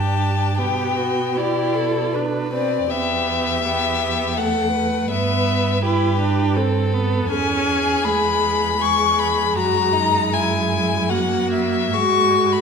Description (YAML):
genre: classical, slow romantic movement for string quartet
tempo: 69-83 BPM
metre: 3/4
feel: rubato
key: unclear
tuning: A4 = 444 Hz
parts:
  - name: warm violin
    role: melody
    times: 0.0-12.6 s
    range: B4 to C#6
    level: -21 LUFS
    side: left 7 dB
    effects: none
  - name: warm violin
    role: second line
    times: 0.0-12.6 s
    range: D#4 to B4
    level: -24 LUFS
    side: left 1 dB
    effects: none
  - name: warm viola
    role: accompaniment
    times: 0.0-12.6 s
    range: G#3 to E4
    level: -24 LUFS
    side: right 4 dB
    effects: none
  - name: warm cello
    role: bass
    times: 0.0-12.6 s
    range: E2 to B2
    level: -24 LUFS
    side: right 3 dB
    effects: none
room: wet recital hall reverb, RT60 1.5 s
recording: minimal, uncompressed stereo recording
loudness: -17 LUFS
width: side -6 dB against mid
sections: 0.0-12.6 A section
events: none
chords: 0.0 G5; 0.6 G/B; 2.9 Em; 5.1 Em/G; 7.3 C#m7/E; 9.6 F#9; 11.9 G#7(no3)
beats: | 0.58 1.37 2.15 | 2.91 3.65 4.38 | 5.11 5.84 6.57 | 7.31 8.05 8.81 | 9.56 10.32 11.10 | 11.93